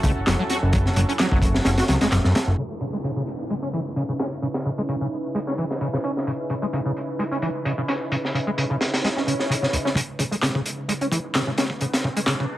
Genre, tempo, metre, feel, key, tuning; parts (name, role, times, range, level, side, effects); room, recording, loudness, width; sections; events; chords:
breakbeat, breaks; 130 BPM; 4/4; swing 54% on 16ths; C# minor; A4 = 440 Hz
lush unison pad; sustained chords; 0.0-12.6 s; C#3 to B4; -30 LUFS; right 1 dB; chorus, sidechain pumping
overdriven acid bass; riff; 0.0-12.5 s; C#2 to F#4; -25 LUFS; equal; ensemble chorus, dub echo
fat analog bass; bass; 0.0-2.5 s; F#1 to C#2; -22 LUFS; equal
crunchy breakbeat drum kit; drums; 0.0-12.5 s; hi-hat, kick drum, snare drum; -24 LUFS; equal; high-pass filter on kick, high-pass filter on hats, high-pass filter on snare, high-pass filter on room
electronic handclaps; drums; 0.3-2.2, 10.4-12.4 s; -28 LUFS; equal; high-pass filter on snare
downlifter, swell and riser; sound effects; 2.6-6.3, 9.2-12.6 s; -34 LUFS; right 1 dB
light reverb, small room ambience; vinyl crackle, low-pass filter; -21 LUFS; side -14 dB against mid
0.0-2.6 A section; 2.6-10.0 B section; 10.0-12.6 C section
kick drops out 1.7-2.6; filter sweep on acid bass 2.6-10.0, 10.0-12.6; filter sweep on analog synth pad 2.6-10.0; filter sweep 2.6-10.0; swell 9.2-10.0; build-up 10.0-12.6
0.0 F#m7; 2.6 C#m9